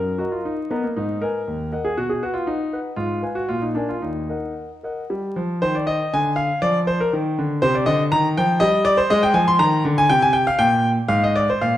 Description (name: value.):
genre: classical-period piano sonatina.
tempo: 109-123 BPM.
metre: 2/4.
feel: rubato.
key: Eb minor, Eb major from 5.1 s.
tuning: A4 = 439 Hz.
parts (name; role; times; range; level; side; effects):
clear concert grand piano; solo; 0.0-11.8 s; Eb2 to C6; -18 LUFS; equal; none.
room: moderate recital hall reverb, RT60 1.3 s.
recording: vinyl crackle.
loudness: -18 LUFS.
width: side -12 dB against mid.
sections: 0.0-5.1 A section; 5.1-11.8 A section.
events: none.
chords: 0.0 Ebm/Gb; 1.0 Abm; 1.5 Ebm; 2.0 B; 3.0 Fdim/Ab; 3.5 Bb7; 4.0 Ebm; 5.1 Eb; 6.1 Dm7b5; 7.1 Cmadd9; 8.1 Eb; 9.1 Fm9; 9.6 Eb5; 10.1 C5; 11.1 N.C..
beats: 0.45 | 0.96 1.48 | 1.97 2.47 | 2.97 3.48 | 4.02 4.56 | 5.10 5.62 | 6.12 6.62 | 7.12 7.62 | 8.12 8.61 | 9.10 9.59 | 10.09 10.59 | 11.10 11.61.